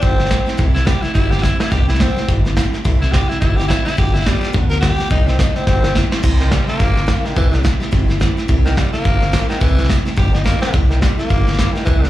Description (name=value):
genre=rockabilly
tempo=213 BPM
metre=4/4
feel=swing 59% on 8ths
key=C major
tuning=A4 = 440 Hz
part: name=breathy tenor saxophone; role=melody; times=0.0-12.1 s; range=Eb3 to Bb4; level=-22 LUFS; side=equal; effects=slapback echo, plate reverb
part: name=picked steel-string acoustic guitar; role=accompaniment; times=0.0-12.1 s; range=G2 to G4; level=-25 LUFS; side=left 1 dB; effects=plate reverb, slapback echo
part: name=upright bass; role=bass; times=0.0-12.1 s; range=G1 to D2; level=-18 LUFS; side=equal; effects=none
part: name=vintage brush drum kit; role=drums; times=0.0-12.1 s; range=crash cymbal, hi-hat, kick drum, snare drum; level=-17 LUFS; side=equal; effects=none
room=little or no reverb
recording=live gig heard through the venue's PA, club reverb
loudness=-13 LUFS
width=side -14 dB against mid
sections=0.0-6.2 A section; 6.2-12.1 B section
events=tenor saxophone solo 0.0-6.2; drum fill 1.4, 5.7-6.2, 10.5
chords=0.0 C; 4.0 G7; 5.1 C